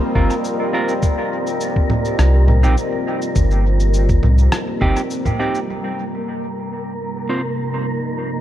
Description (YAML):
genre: ambient dub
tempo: 103 BPM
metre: 4/4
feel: straight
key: C minor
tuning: A4 = 440 Hz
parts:
  - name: deep dark ambient pad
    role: sustained chords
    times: 0.0-8.4 s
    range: C3 to Eb5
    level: -23 LUFS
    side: left 1 dB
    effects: chorus, built-in reverb
  - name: wind-like tuned noise texture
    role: texture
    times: 0.0-8.4 s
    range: Bb3 to Bb4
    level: -26 LUFS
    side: equal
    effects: built-in reverb
  - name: clean electric guitar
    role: stabs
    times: 0.2-7.4 s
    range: C4 to C5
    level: -25 LUFS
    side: right 2 dB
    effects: dub echo
  - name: warm sub bass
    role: bass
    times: 0.2-4.9 s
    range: G1 to C2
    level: -14 LUFS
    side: equal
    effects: none
  - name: electronic kick drum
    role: drums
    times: 0.2-5.4 s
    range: none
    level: -18 LUFS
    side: equal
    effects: none
  - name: electronic cabasa, congas and rim click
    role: drums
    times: 0.3-5.7 s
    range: none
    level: -25 LUFS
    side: right 1 dB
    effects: dub echo
room: digital ambience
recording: echo-heavy mix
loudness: -16 LUFS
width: side -12 dB against mid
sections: 0.0-5.7 A section; 5.7-8.4 B section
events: none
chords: 0.0 Cm; 5.7 Bbsus2/C